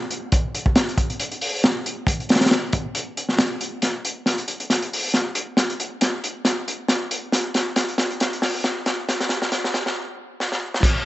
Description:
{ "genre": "breakbeat", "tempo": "137 BPM", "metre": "4/4", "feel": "swing 56% on 16ths", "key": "none", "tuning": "none", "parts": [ { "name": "crunchy breakbeat drum kit", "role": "drums", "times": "0.1-11.0 s", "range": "crash cymbal, hi-hat, kick drum, snare drum", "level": "-20 LUFS", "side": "equal", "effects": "none" } ], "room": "light reverb", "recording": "high-pass filter, nothing above 8.0 kHz", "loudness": "-20 LUFS", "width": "side -16 dB against mid", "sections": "0.0-10.8 A section", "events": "build-up 0.0-10.8; filter sweep 0.0-10.8; drum fill 3.8-10.0, 10.4-10.8; stop 10.0-10.8", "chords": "none" }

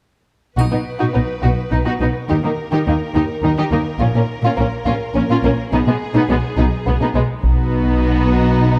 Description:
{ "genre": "cinematic, epic orchestral film score", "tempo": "70 BPM (dotted quarters)", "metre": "6/8", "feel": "straight", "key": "unclear", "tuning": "A4 = 440 Hz", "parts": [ { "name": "rich symphonic violin section", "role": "melody", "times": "0.6-8.8 s", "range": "F#4 to B4", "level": "-31 LUFS", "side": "equal", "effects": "none" }, { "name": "warm symphonic violin section", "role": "second line", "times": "0.6-8.8 s", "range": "G#3 to G4", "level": "-24 LUFS", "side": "equal", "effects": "none" }, { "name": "clear studio viola section", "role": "accompaniment", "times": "0.6-8.8 s", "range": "B3 to D#4", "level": "-25 LUFS", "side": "equal", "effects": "none" }, { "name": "clear symphonic double bass section", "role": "bass", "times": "0.6-8.8 s", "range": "A#1 to D#2", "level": "-22 LUFS", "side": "equal", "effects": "none" }, { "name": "warm symphonic cello section", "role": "bass", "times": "0.6-8.8 s", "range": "A#2 to D#3", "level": "-23 LUFS", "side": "equal", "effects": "none" }, { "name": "triangle", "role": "percussion", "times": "0.6-1.7 s", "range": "none", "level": "-45 LUFS", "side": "equal", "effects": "none" }, { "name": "taiko ensemble", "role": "drums", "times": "7.4-8.5 s", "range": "none", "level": "-20 LUFS", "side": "equal", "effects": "none" } ], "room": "light reverb", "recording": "dark, warm production", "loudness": "-17 LUFS", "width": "mono", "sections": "0.6-7.4 A section; 7.4-8.8 B section", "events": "build-up 7.4-8.8", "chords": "0.6 B; 2.3 D#5; 4.0 A#m; 5.7 G#m/B" }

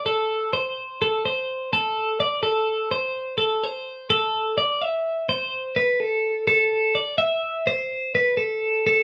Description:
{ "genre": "rock", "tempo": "126 BPM", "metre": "5/4", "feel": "straight", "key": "unclear", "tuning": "A4 = 439 Hz", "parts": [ { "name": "twelve-string electric guitar", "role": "solo", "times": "0.0-9.0 s", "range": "A4 to E5", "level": "-23 LUFS", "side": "equal", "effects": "none" } ], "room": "moderate studio reverb, RT60 0.8 s", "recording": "band playing live in one room", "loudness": "-23 LUFS", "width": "mono", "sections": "0.0-4.8 A section; 4.8-9.0 B section", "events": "none", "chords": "none" }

